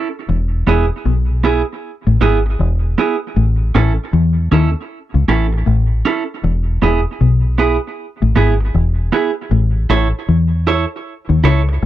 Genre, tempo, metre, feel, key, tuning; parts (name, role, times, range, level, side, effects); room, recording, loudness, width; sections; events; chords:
reggae; 78 BPM; 4/4; swing 63% on 16ths; E major; A4 = 440 Hz
clean electric guitar; accompaniment; 0.0-11.7 s; B3 to C#5; -18 LUFS; right 6 dB; tape echo
mellow electric guitar; riff; 0.3-11.9 s; E2 to E3; -17 LUFS; left 5 dB
deep dub fingered electric bass; bass; 0.3-11.9 s; E1 to E2; -15 LUFS; equal
little or no reverb; dry, close 1970s-style studio recording; -13 LUFS; side -13 dB against mid
0.0-11.9 A section
0.3 E; 3.4 A; 6.4 E; 9.5 A